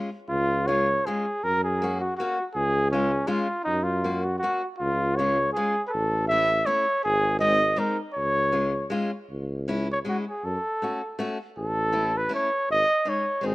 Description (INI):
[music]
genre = alpine folk, alpine dance band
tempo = 160 BPM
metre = 3/4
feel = swing 54% on 8ths, rubato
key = Db major, C# minor from 9.3 s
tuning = A4 = 438 Hz
[part]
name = picked steel-string acoustic guitar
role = accompaniment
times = 0.0-13.5 s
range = Ab3 to Gb4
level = -30 LUFS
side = left 2 dB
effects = none
[part]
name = dark trumpet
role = melody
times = 0.3-13.5 s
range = Db4 to E5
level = -24 LUFS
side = equal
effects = none
[part]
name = mellow tuba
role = bass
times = 0.3-13.5 s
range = G#1 to F#2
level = -28 LUFS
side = equal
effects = none
[sound]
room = light reverb, small room ambience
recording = rough home demo mix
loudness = -23 LUFS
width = side -19 dB against mid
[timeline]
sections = 0.3-9.3 A section; 9.3-13.5 B section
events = none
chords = 0.3 Db; 1.4 Gb; 2.6 Db; 3.7 Gb; 4.8 Db; 5.9 A; 7.0 Ab; 8.2 Db; 9.3 C#m; 10.4 F#m; 11.6 A; 12.7 G#sus4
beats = | 0.29 0.68 1.05 | 1.44 1.81 2.19 | 2.56 2.93 3.29 | 3.67 4.04 4.42 | 4.80 5.18 5.56 | 5.93 6.30 6.67 | 7.04 7.41 7.78 | 8.16 8.54 8.92 | 9.30 9.68 10.06 | 10.44 10.82 11.19 | 11.56 11.94 12.31 | 12.68 13.06 13.44